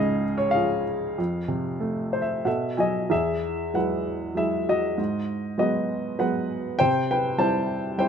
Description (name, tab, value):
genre	classical, lyrical solo piano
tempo	90-102 BPM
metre	3/4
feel	rubato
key	E major from 3.1 s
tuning	A4 = 440 Hz
part	warm upright piano	solo	0.0-8.1 s	C#2 to A5	-23 LUFS	equal	none
room	light reverb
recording	close, detailed microphones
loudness	-23 LUFS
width	side -7 dB against mid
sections	0.0-3.1 A section; 3.1-8.1 B section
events	upright piano fill 1.8-3.1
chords	0.0 C#; 1.2 F; 2.5 B7; 3.1 Eadd9; 5.0 G#m7; 6.8 C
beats	0.56 | 1.18 1.81 2.46 | 3.12 3.75 4.37 | 4.99 5.59 6.20 | 6.80 7.40 7.99